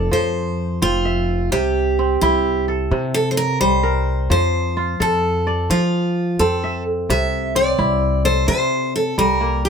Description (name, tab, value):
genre	west african traditional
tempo	86 BPM (dotted quarters)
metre	12/8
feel	straight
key	F major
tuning	A4 = 440 Hz
part	picked steel-string acoustic guitar	melody	0.0-9.7 s	F4 to E5	-20 LUFS	right 1 dB	none
part	kora	arpeggios	0.0-9.7 s	C3 to E5	-22 LUFS	left 1 dB	none
part	upright bass	bass	0.0-9.7 s	F1 to F3	-22 LUFS	equal	none
room	little or no reverb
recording	close, detailed microphones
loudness	-16 LUFS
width	side -6 dB against mid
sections	0.0-9.7 A section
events	steel-string acoustic guitar solo 0.0-9.7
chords	0.0 F; 1.5 C; 4.3 F; 7.1 C